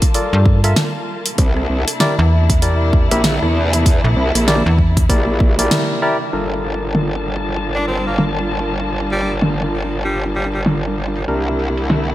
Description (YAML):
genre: glitch hop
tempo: 97 BPM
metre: 4/4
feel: swing 59% on 16ths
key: G dorian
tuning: A4 = 437 Hz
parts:
  - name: warm studio string section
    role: sustained chords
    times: 0.0-12.1 s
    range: C3 to A5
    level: -24 LUFS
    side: left 1 dB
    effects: sidechain pumping, low-pass filter
  - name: electronic kick drum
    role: drums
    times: 0.0-5.6 s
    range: none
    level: -15 LUFS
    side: equal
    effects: none
  - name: pop drum kit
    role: drums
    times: 0.0-12.0 s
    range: hi-hat, rim click, shaker, snare drum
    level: -20 LUFS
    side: equal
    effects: low-pass filter on hats, low-pass filter on snare, low-pass filter on perc, low-pass filter on room
  - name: barky tine electric piano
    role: stabs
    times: 0.1-12.1 s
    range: D4 to E5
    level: -22 LUFS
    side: left 1 dB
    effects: overdrive, vintage 12-bit sampler grit, sidechain pumping, digital delay
  - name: slap-like FM bass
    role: bass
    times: 0.3-5.1 s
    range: Bb1 to G2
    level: -14 LUFS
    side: equal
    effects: none
  - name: growl bass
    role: bass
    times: 1.4-12.1 s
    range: G1 to E2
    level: -19 LUFS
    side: equal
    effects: chorus, tube saturation
  - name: breathy tenor saxophone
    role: melody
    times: 7.8-10.6 s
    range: G3 to D4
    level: -25 LUFS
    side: equal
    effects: digital delay
room: light reverb, digital ambience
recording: bright 1980s-style digital production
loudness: -14 LUFS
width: side -14 dB against mid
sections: 0.0-6.3 A section; 6.3-12.1 B section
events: break 5.7-6.3; band accent 5.7-6.0; filter sweep on drum 6.3-12.1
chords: 0.0 Gm9; 1.4 C9; 6.3 Gm9; 11.3 C9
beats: 0.15 0.77 | 1.38 2.00 2.62 3.24 | 3.86 4.48 5.10 5.71 | 6.33 6.95 7.57 8.19 | 8.81 9.43 10.04 10.66 | 11.28 11.90